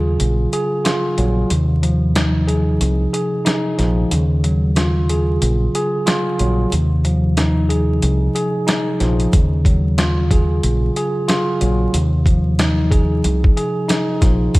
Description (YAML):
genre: hip hop, boom-bap hip-hop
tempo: 92 BPM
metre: 4/4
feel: swing 59% on 16ths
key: unclear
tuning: A4 = 444 Hz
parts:
  - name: tine electric piano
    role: accompaniment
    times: 0.0-14.6 s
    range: C3 to Ab4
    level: -19 LUFS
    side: equal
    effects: medium stereo tremolo, cassette tape, high-pass filter, low-pass filter
  - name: deep dub fingered electric bass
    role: bass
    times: 0.0-14.6 s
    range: Bb1 to Eb2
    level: -17 LUFS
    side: equal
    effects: none
  - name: dusty soul sampler-style drum kit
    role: drums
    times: 0.2-14.6 s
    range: hi-hat, kick drum, snare drum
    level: -19 LUFS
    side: equal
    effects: none
room: moderate plate reverb, RT60 2.3 s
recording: dreamy mix soaked in reverb, vinyl crackle, lossy compression artefacts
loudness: -15 LUFS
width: side -20 dB against mid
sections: 0.0-14.6 A section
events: break 0.0-9.3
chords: 0.0 Ebm11 (rootless); 1.5 Fm7/Eb; 4.1 Ebm11; 6.7 Fm7/Eb; 9.3 Ebm11; 11.9 Fm7/Eb